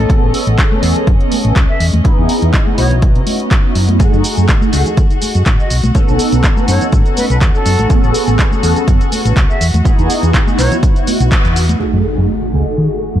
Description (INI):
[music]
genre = filtered disco house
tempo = 123 BPM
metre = 4/4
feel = swing 54% on 16ths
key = F# dorian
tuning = A4 = 438 Hz
[part]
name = jazz flute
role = melody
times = 0.0-10.8 s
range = A4 to E5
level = -23 LUFS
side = equal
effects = sidechain pumping, low-pass filter, ping-pong delay
[part]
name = funky polysynth comp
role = accompaniment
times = 0.0-13.2 s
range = A3 to A4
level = -18 LUFS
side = right 1 dB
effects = chorus, phaser, sidechain pumping, low-pass filter
[part]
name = clear chamber violin section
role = sustained chords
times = 0.0-13.2 s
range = C#4 to F#5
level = -26 LUFS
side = left 2 dB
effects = sidechain pumping, low-pass filter
[part]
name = hollow-body short-scale fingered electric bass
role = bass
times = 0.0-13.2 s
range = A1 to D#3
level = -14 LUFS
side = equal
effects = sidechain pumping, low-pass filter
[part]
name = electronic kick drum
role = drums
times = 0.1-11.4 s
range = none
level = -12 LUFS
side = equal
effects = none
[part]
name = punchy analog drum machine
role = drums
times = 0.1-11.8 s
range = handclaps, hi-hat, shaker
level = -21 LUFS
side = equal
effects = sidechain pumping on hats, sidechain pumping on perc
[part]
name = egg shaker and congas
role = percussion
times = 0.1-11.8 s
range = none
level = -23 LUFS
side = left 2 dB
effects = sidechain pumping on perc, low-pass filter on perc
[part]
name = impact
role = sound effects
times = 11.8-13.2 s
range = none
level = -22 LUFS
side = equal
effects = none
[sound]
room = light reverb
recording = dark, warm production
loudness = -10 LUFS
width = side -11 dB against mid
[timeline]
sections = 0.0-11.8 A section; 11.8-13.2 B section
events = band accent 11.3; impact 11.8-13.2; filter sweep 11.8-13.2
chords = 0.1 Amaj9; 1.8 Emaj7; 4.0 F#m69; 5.7 B9; 7.9 Amaj9; 9.6 Emaj7; 11.8 F#m69